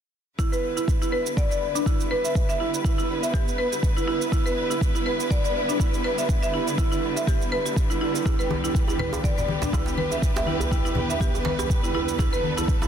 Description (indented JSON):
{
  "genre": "afro house",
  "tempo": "122 BPM",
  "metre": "4/4",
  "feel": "swing 55% on 16ths",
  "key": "E minor pentatonic",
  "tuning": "A4 = 441 Hz",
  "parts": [
    { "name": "warm studio string section", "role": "sustained chords", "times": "0.4-12.9 s", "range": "E2 to B4", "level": "-29 LUFS", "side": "equal", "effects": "sidechain pumping" },
    { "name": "buzzing marimba with medium hard mallets", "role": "arpeggios", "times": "0.4-12.9 s", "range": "D4 to E5", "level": "-26 LUFS", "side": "right 2 dB", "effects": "sidechain pumping, low-pass filter, tape echo" },
    { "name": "electronic kick drum", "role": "drums", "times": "0.4-12.8 s", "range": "none", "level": "-24 LUFS", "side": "equal", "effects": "none" },
    { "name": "shaker", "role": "drums", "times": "0.4-12.9 s", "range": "none", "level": "-37 LUFS", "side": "right 7 dB", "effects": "none" },
    { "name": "djembe", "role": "percussion", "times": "8.3-12.9 s", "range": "none", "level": "-33 LUFS", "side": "right 1 dB", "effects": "none" },
    { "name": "congas", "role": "percussion", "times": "8.5-12.5 s", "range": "none", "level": "-30 LUFS", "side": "left 4 dB", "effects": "none" }
  ],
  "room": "light reverb, studio ambience",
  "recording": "dense, heavily limited modern master",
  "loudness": "-22 LUFS",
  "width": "side -8 dB against mid",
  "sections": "0.4-12.9 A section",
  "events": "none",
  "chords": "0.4 Em7",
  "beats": "| 0.39 0.88 1.37 1.86 | 2.35 2.85 3.34 3.83 | 4.32 4.81 5.30 5.80 | 6.29 6.78 7.27 7.76 | 8.26 8.75 9.24 9.73 | 10.22 10.71 11.21 11.70 | 12.19 12.68"
}